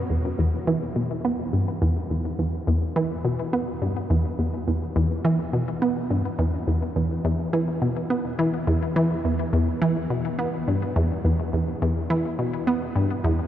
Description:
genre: ambient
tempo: 105 BPM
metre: 4/4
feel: straight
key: E minor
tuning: A4 = 440 Hz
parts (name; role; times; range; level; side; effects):
- resonant blip pluck; solo; 0.0-13.4 s; E2 to B3; -22 LUFS; equal; chorus, ping-pong delay
room: wet huge ambient reverb, RT60 8.1 s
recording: worn, warbling old tape, cassette tape, warbly pitch drift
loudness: -22 LUFS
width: side -11 dB against mid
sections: 0.1-13.5 A section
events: none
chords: none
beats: | 0.10 0.67 1.25 1.82 | 2.39 2.96 3.53 4.10 | 4.67 5.25 5.82 6.39 | 6.96 7.53 8.10 8.67 | 9.25 9.82 10.39 10.96 | 11.53 12.10 12.67 13.25

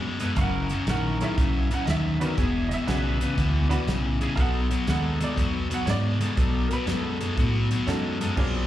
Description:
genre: electric blues shuffle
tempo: 120 BPM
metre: 4/4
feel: swing 66% on 8ths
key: B mixolydian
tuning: A4 = 440 Hz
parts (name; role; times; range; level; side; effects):
- overdriven electric guitar; riff; 0.0-8.7 s; E2 to G#3; -27 LUFS; left 3 dB; slapback echo
- vintage muted fingered electric bass; bass; 0.0-8.7 s; E1 to A2; -27 LUFS; right 1 dB; none
- warm horn section; stabs; 0.2-8.3 s; B3 to B4; -37 LUFS; right 1 dB; analog delay, slapback echo
- warm soul drum kit; drums; 0.2-8.5 s; crash cymbal, hi-hat, kick drum, snare drum; -28 LUFS; right 1 dB; none
- bright upright piano; accompaniment; 0.4-8.7 s; A#3 to F#5; -33 LUFS; right 5 dB; slapback echo
room: little or no reverb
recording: live gig heard through the venue's PA, club reverb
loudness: -22 LUFS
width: side -13 dB against mid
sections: 0.0-8.4 A section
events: none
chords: 0.4 F#7; 2.4 E7; 4.4 B7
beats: | 0.37 0.88 1.38 1.88 | 2.38 2.88 3.38 3.88 | 4.38 4.88 5.38 5.88 | 6.38 6.87 7.37 7.87 | 8.37

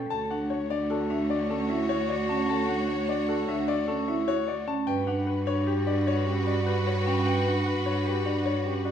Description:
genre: classical, minimalist pattern music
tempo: 151 BPM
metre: 6/4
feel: straight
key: D major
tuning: A4 = 440 Hz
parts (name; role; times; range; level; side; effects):
- warm grand piano; melody; 0.0-8.9 s; G4 to A5; -31 LUFS; left 9 dB; none
- vibraphone with medium mallets; arpeggios; 0.0-8.9 s; C#4 to B4; -29 LUFS; right 2 dB; none
- warm clarinet; second line; 0.1-8.9 s; F#4; -34 LUFS; right 4 dB; none
- clear symphonic string section; sustained chords; 0.1-8.9 s; F#4 to C#5; -35 LUFS; left 2 dB; none
- warm cello; bass; 0.1-8.9 s; D2 to G2; -31 LUFS; right 2 dB; none
room: moderate scoring stage reverb, RT60 1.6 s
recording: none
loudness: -24 LUFS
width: side -8 dB against mid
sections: 0.1-8.9 A section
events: none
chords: 0.1 Dmaj7; 4.9 Gmaj7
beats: | 0.10 0.50 0.90 1.30 1.70 2.09 | 2.49 2.89 3.28 3.68 4.08 4.48 | 4.87 5.27 5.67 6.07 6.46 6.86 | 7.26 7.66 8.05 8.45 8.85

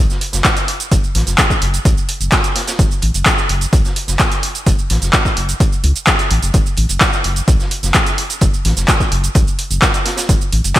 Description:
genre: acid house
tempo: 128 BPM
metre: 4/4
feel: straight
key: F# minor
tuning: A4 = 441 Hz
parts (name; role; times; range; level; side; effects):
- round analog bass; bass; 0.0-10.7 s; F#1 to C#2; -17 LUFS; equal; tube saturation, sidechain pumping
- punchy analog drum machine; drums; 0.1-10.8 s; handclaps, hi-hat, shaker; -17 LUFS; right 1 dB; gated reverb
- street-band drum kit; drums; 0.1-10.8 s; hi-hat, snare drum; -26 LUFS; equal; high-pass filter on hats, high-pass filter on snare, high-pass filter on room, gated reverb
- electronic kick drum; drums; 0.4-10.8 s; none; -15 LUFS; equal; none
room: light reverb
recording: bright 1980s-style digital production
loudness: -12 LUFS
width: side -14 dB against mid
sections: 0.0-10.8 A section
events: none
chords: none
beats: 0.45 | 0.92 1.38 1.85 2.32 | 2.79 3.26 3.73 4.20 | 4.67 5.13 5.60 6.07 | 6.54 7.01 7.48 7.95 | 8.41 8.88 9.35 9.82 | 10.29 10.76

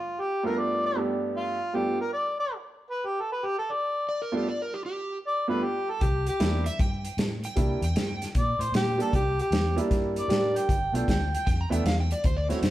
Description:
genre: electric blues shuffle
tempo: 154 BPM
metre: 4/4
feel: swing 65% on 8ths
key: unclear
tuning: A4 = 440 Hz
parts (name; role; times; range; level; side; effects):
- mellow harmonica; melody; 0.0-11.5 s; F4 to G5; -28 LUFS; equal; overdrive
- bright upright piano; accompaniment; 0.4-2.0, 4.3-12.6 s; G2 to Bb4; -29 LUFS; right 2 dB; none
- overdriven slide guitar; second line; 4.1-8.3, 11.5-12.7 s; G4 to Bb5; -33 LUFS; equal; none
- vintage muted fingered electric bass; bass; 6.0-12.7 s; G1 to Bb2; -29 LUFS; equal; none
- warm soul drum kit; drums; 6.0-12.7 s; hi-hat, kick drum, snare drum; -27 LUFS; equal; none
room: moderate stone room reverb, RT60 1.2 s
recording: band playing live in one room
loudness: -24 LUFS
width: side -14 dB against mid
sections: 0.0-12.7 A section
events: none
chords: 0.0 G7; 6.0 C7; 10.7 G7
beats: 0.20 0.59 0.97 | 1.36 1.75 2.13 2.52 | 2.91 3.30 3.69 4.07 | 4.46 4.85 5.24 5.63 | 6.01 6.40 6.79 7.18 | 7.57 7.96 8.35 8.73 | 9.12 9.51 9.90 10.29 | 10.68 11.07 11.46 11.85 | 12.24 12.63

